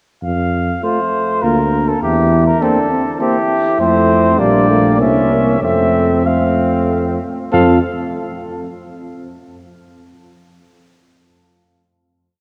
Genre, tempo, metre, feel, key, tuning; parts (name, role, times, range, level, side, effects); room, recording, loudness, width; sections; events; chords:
classical, brass quintet; 94-102 BPM; 3/4; straight; F major; A4 = 439 Hz
warm cornet; melody; 0.2-7.8 s; G4 to F5; -21 LUFS; equal
clear tuba; bass; 0.2-7.8 s; Bb1 to F2; -21 LUFS; equal
mellow trumpet; second line; 0.8-7.8 s; Bb3 to A4; -24 LUFS; equal
dark French horn; accompaniment; 0.8-7.8 s; G3 to F4; -22 LUFS; equal
mellow trombone; accompaniment; 0.8-7.8 s; A3 to E4; -21 LUFS; equal
wet cathedral reverb, RT60 4.5 s; worn, warbling old tape, cassette tape, warbly pitch drift; -15 LUFS; mono
0.2-7.5 theme; 7.5-9.4 final chord
0.2 F; 1.4 Bb/D; 2.0 C7/E (rootless); 3.8 F; 4.4 Gm/Bb; 5.0 C7b9; 5.6 F; 7.5 F5